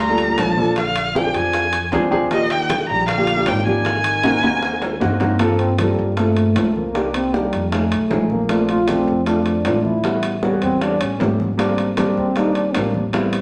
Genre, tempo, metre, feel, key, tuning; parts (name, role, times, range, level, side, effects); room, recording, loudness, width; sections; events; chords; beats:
Afro-Cuban jazz; 155 BPM; 4/4; straight; A4 = 440 Hz
rich erhu; melody; 0.0-5.2 s; Eb5 to Bb5; -22 LUFS; equal
mellow trombone; second line; 0.0-12.9 s; Bb2 to F4; -25 LUFS; equal
upright bass; bass; 0.0-13.4 s; Ab1 to G2; -28 LUFS; equal
bongos; percussion; 0.0-13.4 s; -30 LUFS; equal
congas; percussion; 0.0-13.4 s; -35 LUFS; equal
dark baby grand piano; accompaniment; 0.1-13.4 s; G3 to G5; -22 LUFS; equal
timbales; percussion; 0.2-13.4 s; -31 LUFS; equal
wet large studio reverb, RT60 1.0 s; -19 LUFS; mono
0.0-5.4 A section; 5.4-13.4 B section
grand piano fill 1.7-2.3; drum fill 4.2-5.4; trombone solo 5.4-13.4
0.0 Gm9; 0.8 Bb7; 2.3 Ebmaj7; 3.9 Ab9; 5.4 Gm11; 7.0 Cm7; 7.7 F7alt; 8.5 Bbmaj9; 10.0 A13; 11.6 Abmaj9#11
0.38 | 0.77 1.16 1.54 1.93 | 2.32 2.70 3.09 3.48 | 3.86 4.25 4.63 5.02 | 5.41 5.79 6.18 6.56 | 6.95 7.34 7.72 8.11 | 8.50 8.88 9.27 9.66 | 10.04 10.43 10.82 11.21 | 11.59 11.98 12.37 12.75 | 13.14